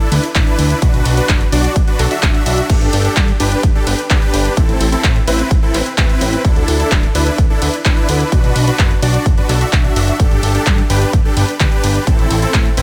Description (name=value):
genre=EDM, festival progressive house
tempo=128 BPM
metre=4/4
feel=straight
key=G major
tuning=A4 = 442 Hz
part: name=supersaw chords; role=riff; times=0.0-12.8 s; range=C4 to E5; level=-20 LUFS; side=equal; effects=sidechain pumping, dub echo
part: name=fat analog bass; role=bass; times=0.1-12.8 s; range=D1 to A2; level=-19 LUFS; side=equal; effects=sidechain pumping
part: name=big-room dance drum kit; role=drums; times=0.1-12.8 s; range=crash cymbal, handclaps, hi-hat, ride cymbal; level=-24 LUFS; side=equal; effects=none
part: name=electronic kick drum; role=drums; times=0.4-12.6 s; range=none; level=-16 LUFS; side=equal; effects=none
room=digital ambience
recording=none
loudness=-14 LUFS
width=mono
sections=0.0-12.8 A section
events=none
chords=0.0 Dsus2; 0.8 Bm; 2.7 Gsus2; 4.6 Am; 6.4 Dsus2; 8.3 Bm; 10.2 Gsus2; 12.1 Am